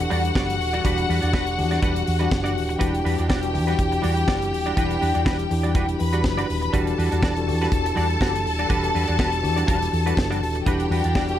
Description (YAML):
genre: disco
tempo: 122 BPM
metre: 4/4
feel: swing 56% on 16ths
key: E minor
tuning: A4 = 440 Hz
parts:
  - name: clear studio string section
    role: second line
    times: 0.0-11.4 s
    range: F#4 to B5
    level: -26 LUFS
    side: left 2 dB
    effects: none
  - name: mellow tine electric piano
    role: accompaniment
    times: 0.0-11.4 s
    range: E3 to A4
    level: -27 LUFS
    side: left 2 dB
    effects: medium stereo tremolo
  - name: semi-hollow electric guitar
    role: accompaniment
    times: 0.0-11.4 s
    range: G3 to D5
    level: -30 LUFS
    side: right 4 dB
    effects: analog chorus
  - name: hollow-body short-scale fingered electric bass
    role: bass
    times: 0.0-11.4 s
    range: D#1 to E2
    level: -25 LUFS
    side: equal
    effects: none
  - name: modern studio drum kit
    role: drums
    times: 0.0-11.4 s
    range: hi-hat, kick drum, snare drum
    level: -26 LUFS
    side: equal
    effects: none
room: small room ambience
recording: none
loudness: -20 LUFS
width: side -11 dB against mid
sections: 0.0-11.4 A section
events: none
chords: 0.0 Em9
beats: 0.36 | 0.85 1.34 1.83 2.32 | 2.81 3.30 3.79 4.28 | 4.77 5.26 5.75 6.24 | 6.74 7.23 7.72 8.21 | 8.70 9.19 9.68 10.17 | 10.66 11.15